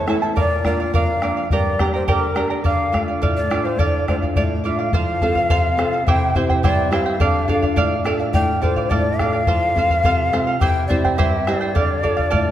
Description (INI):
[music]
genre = andean folk, Andean ensemble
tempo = 106 BPM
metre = 2/4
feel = straight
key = D minor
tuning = A4 = 435 Hz
[part]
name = breathy large quena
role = melody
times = 0.0-12.5 s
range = Bb4 to G5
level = -22 LUFS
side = left 2 dB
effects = none
[part]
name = charango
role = accompaniment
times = 0.0-12.5 s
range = E4 to Bb5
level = -23 LUFS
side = right 4 dB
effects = none
[part]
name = nylon-string guitar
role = accompaniment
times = 0.0-12.5 s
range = E2 to A4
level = -23 LUFS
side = equal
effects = none
[part]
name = bombo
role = percussion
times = 0.1-12.5 s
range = none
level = -21 LUFS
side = left 1 dB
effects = none
[sound]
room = wet concert hall reverb, RT60 1.9 s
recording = none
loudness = -16 LUFS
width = side -11 dB against mid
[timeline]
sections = 0.0-4.9 A section; 4.9-12.5 B section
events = none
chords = 0.4 Bb; 1.5 Gm; 2.6 Dm; 4.9 F; 6.1 C; 7.2 Dm; 9.5 F; 10.6 C; 11.7 Dm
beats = | 0.35 0.93 | 1.50 2.07 | 2.65 3.22 | 3.79 4.36 | 4.93 5.50 | 6.07 6.64 | 7.21 7.77 | 8.34 8.91 | 9.48 10.04 | 10.61 11.18 | 11.74 12.31